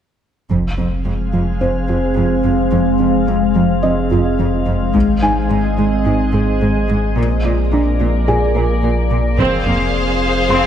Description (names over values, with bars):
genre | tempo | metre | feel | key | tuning
cinematic, hybrid orchestral and electronic film score | 108 BPM | 4/4 | straight | F minor | A4 = 440 Hz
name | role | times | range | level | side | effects
glassy FM pad | sustained chords | 1.0-10.7 s | F3 to F5 | -18 LUFS | left 1 dB | ensemble chorus, built-in reverb
harp-like synth pluck | arpeggios | 0.5-10.7 s | F3 to Bb4 | -22 LUFS | right 1 dB | chorus, digital delay
rich symphonic cello section | bass | 0.5-10.6 s | F2 to Bb2 | -21 LUFS | right 2 dB | none
sub bass with octave | bass | 0.5-10.7 s | F1 to Bb1 | -20 LUFS | equal | none
taiko ensemble | drums | 0.5-1.6, 4.9-6.0, 9.4-10.5 s | none | -24 LUFS | equal | none
felt-muted upright piano | texture | 1.6-10.7 s | Ab4 to C6 | -24 LUFS | equal | digital delay
rich symphonic violin section | second line | 9.4-10.7 s | C5 to F5 | -18 LUFS | left 3 dB | none
clear symphonic viola section | accompaniment | 9.4-10.7 s | Bb3 to Ab4 | -19 LUFS | right 2 dB | none
room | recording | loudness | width
moderate scoring stage reverb, RT60 1.7 s | none | -14 LUFS | side -9 dB against mid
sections
0.5-9.4 A section; 9.4-10.7 B section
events
build-up 9.4-10.7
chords
0.5 Fm; 4.9 Ab; 7.2 Bb; 9.4 Fm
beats
| 0.50 1.06 1.61 2.17 | 2.73 3.28 3.84 4.39 | 4.95 5.50 6.06 6.61 | 7.17 7.72 8.28 8.84 | 9.39 9.95 10.50